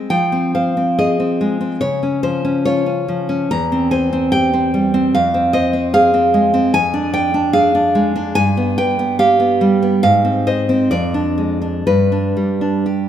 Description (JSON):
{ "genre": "romantic piece for solo classical guitar", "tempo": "60-77 BPM", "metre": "2/4", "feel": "rubato", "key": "F minor", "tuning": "A4 = 440 Hz", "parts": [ { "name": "nylon-string guitar", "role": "solo", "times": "0.0-13.1 s", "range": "E2 to Bb5", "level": "-14 LUFS", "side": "equal", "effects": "none" } ], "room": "moderate concert hall reverb, RT60 2.4 s", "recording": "minimal, uncompressed stereo recording", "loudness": "-14 LUFS", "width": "side -10 dB against mid", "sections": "0.1-13.1 A section", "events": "none", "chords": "0.1 Fm; 1.8 Db; 3.5 C/E; 5.2 Fm; 6.7 Ddim/F; 8.4 G7; 10.0 Ab; 10.9 Ddim/F; 11.9 G" }